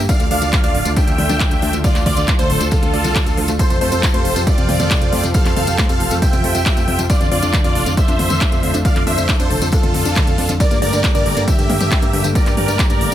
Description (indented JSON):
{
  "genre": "uplifting trance",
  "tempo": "137 BPM",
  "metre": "4/4",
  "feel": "straight",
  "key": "D minor",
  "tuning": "A4 = 440 Hz",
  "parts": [
    { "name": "lush unison pad", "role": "sustained chords", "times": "0.0-13.1 s", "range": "F3 to C5", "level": "-25 LUFS", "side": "equal", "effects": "chorus, vintage 12-bit sampler grit, sidechain pumping" },
    { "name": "wide unison pluck", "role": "arpeggios", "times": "0.0-12.3 s", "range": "C3 to D5", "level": "-25 LUFS", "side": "left 3 dB", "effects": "sidechain pumping" },
    { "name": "solid FM bass", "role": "bass", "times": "0.0-13.1 s", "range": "D1 to G2", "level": "-21 LUFS", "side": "equal", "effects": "tube saturation, sidechain pumping" },
    { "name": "big supersaw lead", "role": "melody", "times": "0.1-13.1 s", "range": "F4 to G5", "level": "-22 LUFS", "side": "right 1 dB", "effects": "phaser, sidechain pumping, digital delay" },
    { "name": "supersaw stab", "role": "second line", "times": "0.1-12.3 s", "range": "A4 to G5", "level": "-26 LUFS", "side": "right 1 dB", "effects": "sidechain pumping, dub echo" },
    { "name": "electronic kick drum", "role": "drums", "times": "0.1-12.9 s", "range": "none", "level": "-17 LUFS", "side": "equal", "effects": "studio reverb" },
    { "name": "techno drum kit", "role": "drums", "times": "0.1-13.1 s", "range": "handclaps, hi-hat, toms", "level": "-23 LUFS", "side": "equal", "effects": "studio reverb" },
    { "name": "tambourine", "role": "percussion", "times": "0.1-13.1 s", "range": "none", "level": "-29 LUFS", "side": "left 5 dB", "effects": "none" }
  ],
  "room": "digital ambience",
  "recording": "none",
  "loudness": "-13 LUFS",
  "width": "side -12 dB against mid",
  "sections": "0.0-13.1 A section",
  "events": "none",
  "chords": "0.1 Dm; 3.6 Fadd9; 7.1 Dm/F; 10.6 Gmadd9"
}